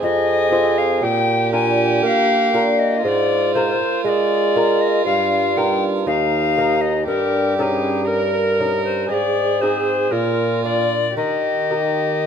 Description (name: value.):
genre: classical, baroque-style sonata movement with continuo.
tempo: 59 BPM.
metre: 4/4.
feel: straight.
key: Eb major.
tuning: A4 = 436 Hz.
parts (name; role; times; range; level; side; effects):
bright alto recorder; melody; 0.0-12.3 s; Ab4 to Ab5; -20 LUFS; left 7 dB; none.
warm violin; second line; 0.0-12.3 s; Eb4 to Bb4; -23 LUFS; right 8 dB; none.
lute; accompaniment; 0.0-12.3 s; Eb2 to C5; -24 LUFS; left 2 dB; none.
mellow bassoon; bass; 0.0-12.3 s; Eb2 to Bb3; -21 LUFS; right 2 dB; none.
room: moderate recital hall reverb, RT60 1.3 s.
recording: none.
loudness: -16 LUFS.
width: side -7 dB against mid.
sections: 0.0-12.3 A section.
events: none.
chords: 0.0 Fm; 1.0 Bb; 3.0 Bb5/Ab; 5.1 Eb/G; 7.1 Eb7/G; 9.1 Ab; 10.1 Bb; 11.2 Eb.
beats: 0.03 1.03 2.04 | 3.04 4.05 5.06 6.07 | 7.08 8.10 9.11 10.13 | 11.18 12.24.